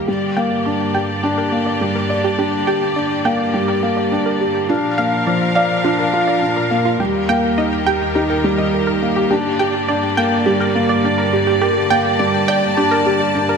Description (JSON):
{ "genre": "piano and strings electronica", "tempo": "104 BPM", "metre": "4/4", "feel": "straight", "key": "G minor", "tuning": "A4 = 440 Hz", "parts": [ { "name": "clear studio string section", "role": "sustained chords", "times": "0.0-13.6 s", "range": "Eb2 to A5", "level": "-20 LUFS", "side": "left 1 dB", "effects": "none" }, { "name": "felt-muted upright piano", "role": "riff", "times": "0.0-13.6 s", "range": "F3 to D5", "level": "-17 LUFS", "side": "equal", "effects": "ping-pong delay" }, { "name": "analog pluck", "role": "arpeggios", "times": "0.1-13.6 s", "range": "F4 to G5", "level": "-21 LUFS", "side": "right 2 dB", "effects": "chorus, ping-pong delay" } ], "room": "moderate scoring stage reverb, RT60 1.8 s, studio ambience", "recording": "none", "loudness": "-15 LUFS", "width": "side -6 dB against mid", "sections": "0.1-13.6 A section", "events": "build-up 0.1-13.6; filter sweep on synth arpeggio sound 0.1-13.6", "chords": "0.1 Gm; 4.7 Bb; 7.0 Eb; 9.3 Gm", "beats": "| 0.08 0.66 1.23 1.81 | 2.39 2.96 3.54 4.12 | 4.69 5.27 5.85 6.42 | 7.00 7.58 8.16 8.73 | 9.31 9.89 10.46 11.04 | 11.62 12.19 12.77 13.35" }